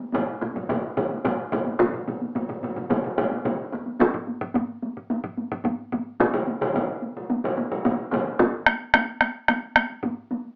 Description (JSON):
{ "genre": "japanese traditional, taiko drum ensemble", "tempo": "109 BPM", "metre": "4/4", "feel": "straight", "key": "none", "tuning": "none", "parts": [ { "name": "taiko ensemble", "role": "percussion", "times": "0.0-10.5 s", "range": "none", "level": "-31 LUFS", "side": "equal", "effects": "none" }, { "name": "solo taiko drums", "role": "percussion", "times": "0.1-10.2 s", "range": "none", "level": "-25 LUFS", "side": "equal", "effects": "none" }, { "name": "taiko ensemble", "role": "percussion", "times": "0.1-8.3 s", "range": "none", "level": "-29 LUFS", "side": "equal", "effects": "none" }, { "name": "taiko ensemble", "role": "percussion", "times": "0.4-8.5 s", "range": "none", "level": "-26 LUFS", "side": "equal", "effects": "none" } ], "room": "moderate studio ambience, RT60 0.5 s", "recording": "band playing live in one room, AM radio sound", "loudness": "-25 LUFS", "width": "mono", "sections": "0.0-4.0 A section; 4.0-10.6 B section", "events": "none", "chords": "none", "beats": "0.14 0.69 1.25 | 1.80 2.35 2.90 3.46 | 4.01 4.56 5.11 5.66 | 6.21 6.75 7.30 7.85 | 8.40 8.94 9.49 10.03" }